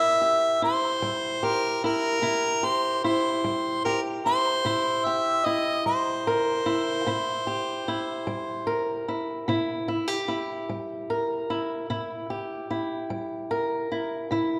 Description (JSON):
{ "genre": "acoustic country blues, solo or duo", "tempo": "50 BPM (dotted quarters)", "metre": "12/8", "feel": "straight", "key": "C mixolydian", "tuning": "A4 = 439 Hz", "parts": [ { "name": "warm harmonica", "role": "melody", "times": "0.0-9.0 s", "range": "Bb4 to E5", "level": "-27 LUFS", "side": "equal", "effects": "none" }, { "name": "fingerpicked swing-style acoustic guitar", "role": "accompaniment", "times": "0.0-14.6 s", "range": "C3 to Bb4", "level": "-30 LUFS", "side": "equal", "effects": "none" } ], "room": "wet scoring stage reverb, RT60 1.9 s", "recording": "recorded in a church or concert hall", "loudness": "-27 LUFS", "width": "mono", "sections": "0.0-14.6 A section", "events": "none", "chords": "0.0 C7" }